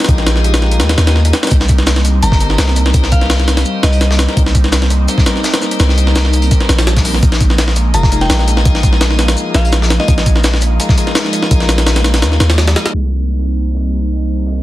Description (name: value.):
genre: drum and bass, jungle.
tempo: 168 BPM.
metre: 4/4.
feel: straight.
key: C minor.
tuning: A4 = 438 Hz.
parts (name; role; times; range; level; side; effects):
airy breathy pad; sustained chords; 0.0-14.6 s; F3 to G4; -22 LUFS; right 1 dB; chorus, phaser.
tonewheel organ; stabs; 0.0-12.9 s; G3 to Bb4; -22 LUFS; left 2 dB; overdrive, slow rotary speaker, dub echo.
jungle sampler-style drum kit; drums; 0.0-12.9 s; hi-hat, kick drum, snare drum; -14 LUFS; equal; small room ambience.
long sustained 808-style bass; bass; 0.1-14.6 s; F1 to Eb2; -13 LUFS; equal; none.
crunchy breakbeat drum kit; drums; 1.5-14.6 s; hi-hat, shaker, snare drum; -24 LUFS; left 3 dB; high-pass filter on hats, small room ambience, high-pass filter on snare, high-pass filter on perc, high-pass filter on room.
glassy synth bell; melody; 2.2-4.2, 7.9-10.1 s; Eb5 to Bb5; -23 LUFS; left 1 dB; chorus, dub echo.
room: light reverb.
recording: dense, heavily limited modern master, vinyl crackle, low-pass filter.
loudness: -10 LUFS.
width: side -16 dB against mid.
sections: 0.0-12.9 A section; 12.9-14.6 B section.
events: drop 0.0-12.9; filter sweep 12.9-14.6.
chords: 0.0 Bb7sus4; 1.5 Cm7; 7.2 Bb7sus4; 12.9 Cm7.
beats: | 0.08 0.44 0.80 1.16 | 1.51 1.87 2.23 2.58 | 2.94 3.30 3.66 4.01 | 4.37 4.73 5.08 5.44 | 5.80 6.16 6.51 6.87 | 7.23 7.58 7.94 8.30 | 8.66 9.01 9.37 9.73 | 10.08 10.44 10.80 11.16 | 11.51 11.87 12.23 12.58 | 12.94 13.30 13.66 14.01 | 14.37.